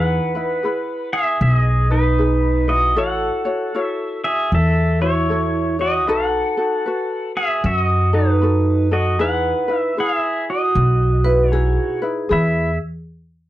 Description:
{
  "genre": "Hawaiian",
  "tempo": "77 BPM",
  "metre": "4/4",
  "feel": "swing 64% on 8ths",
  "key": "E major",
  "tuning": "A4 = 440 Hz",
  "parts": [
    { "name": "pedal steel guitar", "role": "melody", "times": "0.0-12.8 s", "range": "D#4 to F#5", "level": "-19 LUFS", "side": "right 1 dB", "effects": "none" },
    { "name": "ukulele", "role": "accompaniment", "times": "0.0-12.7 s", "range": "D#4 to C#5", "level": "-24 LUFS", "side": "left 2 dB", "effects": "none" },
    { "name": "upright bass", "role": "bass", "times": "0.0-12.8 s", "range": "A1 to F#2", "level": "-18 LUFS", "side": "equal", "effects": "none" },
    { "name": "vibraphone with medium hard mallets", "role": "second line", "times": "11.2-12.8 s", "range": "G#4 to B4", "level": "-22 LUFS", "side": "right 1 dB", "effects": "none" }
  ],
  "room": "light reverb",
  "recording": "dry, close 1970s-style studio recording",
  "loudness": "-16 LUFS",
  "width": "side -14 dB against mid",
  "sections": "0.0-12.3 A section; 12.3-13.5 B section",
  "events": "none",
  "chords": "0.0 Emaj7; 3.0 A6; 6.1 B7; 9.2 Emaj7; 12.3 E",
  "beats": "0.64 1.41 2.19 | 2.97 3.75 4.52 5.30 | 6.08 6.86 7.63 8.41 | 9.19 9.97 10.75 11.53 | 12.30"
}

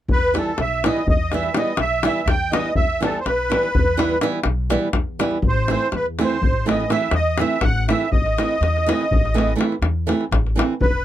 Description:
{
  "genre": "balkan folk, Balkan wedding band",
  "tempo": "246 BPM (eighths)",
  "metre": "11/8",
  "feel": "straight",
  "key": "E harmonic minor",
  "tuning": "A4 = 440 Hz",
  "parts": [
    { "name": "musette accordion", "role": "melody", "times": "0.1-11.0 s", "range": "A4 to G5", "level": "-21 LUFS", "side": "right 1 dB", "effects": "none" },
    { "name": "upright bass", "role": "bass", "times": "0.1-11.0 s", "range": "E1 to E2", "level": "-24 LUFS", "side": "equal", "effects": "none" },
    { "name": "davul", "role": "percussion", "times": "0.1-10.9 s", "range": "none", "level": "-22 LUFS", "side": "left 2 dB", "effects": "none" },
    { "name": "flamenco guitar", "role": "accompaniment", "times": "0.3-10.7 s", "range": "E3 to E4", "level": "-22 LUFS", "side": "right 3 dB", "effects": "none" }
  ],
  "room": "little or no reverb",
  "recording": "close, detailed microphones",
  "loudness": "-17 LUFS",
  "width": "side -12 dB against mid",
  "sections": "0.1-11.0 A section",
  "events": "none",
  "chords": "0.1 Em; 5.4 Am",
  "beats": "| 0.08 0.32 0.56 0.81 1.05 1.29 1.54 1.78 2.02 2.27 2.51 | 2.76 3.00 3.24 3.49 3.73 3.97 4.22 4.46 4.71 4.95 5.19 | 5.44 5.68 5.92 6.17 6.41 6.65 6.90 7.14 7.38 7.63 7.87 | 8.12 8.36 8.60 8.85 9.09 9.33 9.58 9.82 10.06 10.31 10.55 | 10.79 11.04"
}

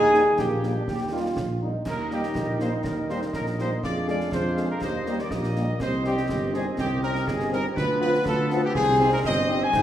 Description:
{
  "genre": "military-style march for wind band",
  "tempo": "122 BPM",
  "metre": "2/4",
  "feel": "straight",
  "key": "Eb major",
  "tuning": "A4 = 440 Hz",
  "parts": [
    { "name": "mellow trumpet section", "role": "melody", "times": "0.0-9.8 s", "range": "G4 to Ab5", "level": "-26 LUFS", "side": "left 1 dB", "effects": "none" },
    { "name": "mellow wooden piccolo", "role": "second line", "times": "0.0-1.3 s", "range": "G5 to Ab5", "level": "-32 LUFS", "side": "equal", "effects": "none" },
    { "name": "mellow woodwind section", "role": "second line", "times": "0.0-9.8 s", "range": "F4 to F5", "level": "-30 LUFS", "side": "right 1 dB", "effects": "none" },
    { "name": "warm trombone section", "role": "sustained chords", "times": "0.0-9.8 s", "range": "Eb3 to G4", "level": "-31 LUFS", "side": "right 2 dB", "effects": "none" },
    { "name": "dark tuba", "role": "bass", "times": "0.0-9.8 s", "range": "G1 to Ab2", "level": "-28 LUFS", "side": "right 1 dB", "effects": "none" },
    { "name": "dark French horn section", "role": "accompaniment", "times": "0.1-9.6 s", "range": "F3 to Ab4", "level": "-32 LUFS", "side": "left 2 dB", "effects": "none" },
    { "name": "concert snare drum, concert bass drum and clash cymbals", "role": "drums", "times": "0.1-9.8 s", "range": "none", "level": "-35 LUFS", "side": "equal", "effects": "none" }
  ],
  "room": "wet recital hall reverb, RT60 1.4 s",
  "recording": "recorded in a church or concert hall",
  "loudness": "-22 LUFS",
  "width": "side -11 dB against mid",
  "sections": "0.0-1.9 A section; 1.9-9.8 B section",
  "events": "none",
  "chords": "0.0 Eb; 3.8 Ddim/F; 4.8 Eb; 5.8 Cm; 7.8 Bdim/D; 8.8 Cm",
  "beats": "0.39 | 0.88 1.37 | 1.86 2.36 | 2.85 3.34 | 3.83 4.32 | 4.82 5.31 | 5.80 6.29 | 6.79 7.28 | 7.77 8.26 | 8.75 9.24 | 9.74"
}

